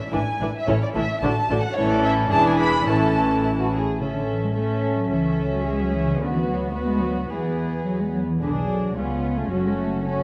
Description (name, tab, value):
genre	quick classical-period movement for string orchestra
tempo	109 BPM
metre	2/4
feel	straight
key	A major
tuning	A4 = 438 Hz
part	dark chamber violin section	melody	0.0-10.2 s	G#4 to B5	-30 LUFS	equal	none
part	dark chamber violin section	second line	0.1-10.2 s	E4 to B4	-31 LUFS	equal	none
part	warm studio viola section	accompaniment	0.1-10.2 s	D3 to D4	-28 LUFS	equal	none
part	warm studio cello section	bass	0.1-10.2 s	E2 to C#4	-29 LUFS	equal	none
part	warm studio double bass section	bass	0.1-10.2 s	E1 to E2	-30 LUFS	equal	none
room	wet scoring stage reverb, RT60 1.4 s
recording	none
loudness	-22 LUFS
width	mono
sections	0.0-4.0 A section; 4.0-10.2 A section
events	none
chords	0.1 E7/A; 0.7 A; 1.2 D/A; 1.8 A; 2.3 E7; 2.9 A; 5.1 A/C#; 6.2 Bm/D; 7.3 E; 8.4 G#m7b5/B; 9.0 C#; 9.5 F#m